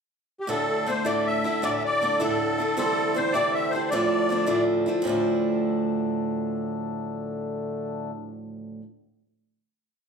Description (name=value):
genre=celtic folk, Celtic jig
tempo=106 BPM (dotted quarters)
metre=6/8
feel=straight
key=D minor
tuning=A4 = 440 Hz
part: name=musette accordion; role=melody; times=0.4-4.6 s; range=G4 to E5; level=-25 LUFS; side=left 1 dB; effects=none
part: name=picked swing-style acoustic guitar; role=accompaniment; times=0.5-8.8 s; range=D2 to E4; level=-26 LUFS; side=right 2 dB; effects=none
part: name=mellow accordion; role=drone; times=0.5-8.1 s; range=D3 to A3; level=-32 LUFS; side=left 5 dB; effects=none
room=moderate large studio reverb, RT60 1.1 s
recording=band playing live in one room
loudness=-23 LUFS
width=side -6 dB against mid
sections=0.0-0.5 pickup bar; 0.5-5.0 A section; 5.0-7.3 final chord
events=none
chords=0.5 Dsus2; 2.8 C; 3.9 Dmadd9